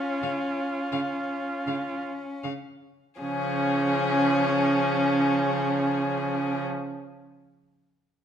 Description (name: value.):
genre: classical, slow romantic movement for string quartet.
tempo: 26 BPM (dotted quarters).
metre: 12/8.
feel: rubato.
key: Db major.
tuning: A4 = 441 Hz.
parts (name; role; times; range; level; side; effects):
rich violin; second line; 0.0-6.6 s; Db4; -28 LUFS; left 2 dB; none.
rich viola; accompaniment; 0.0-6.7 s; F3 to F4; -31 LUFS; right 3 dB; none.
rich violin; melody; 0.2-6.7 s; Ab4 to F5; -31 LUFS; left 8 dB; none.
clear cello; bass; 0.2-6.7 s; Db3; -29 LUFS; right 6 dB; none.
room: wet recital hall reverb, RT60 1.3 s.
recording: none.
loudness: -24 LUFS.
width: side -9 dB against mid.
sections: 0.0-3.2 A section; 3.2-8.2 B section.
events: slowing down 0.0-3.2.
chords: 0.0 Db.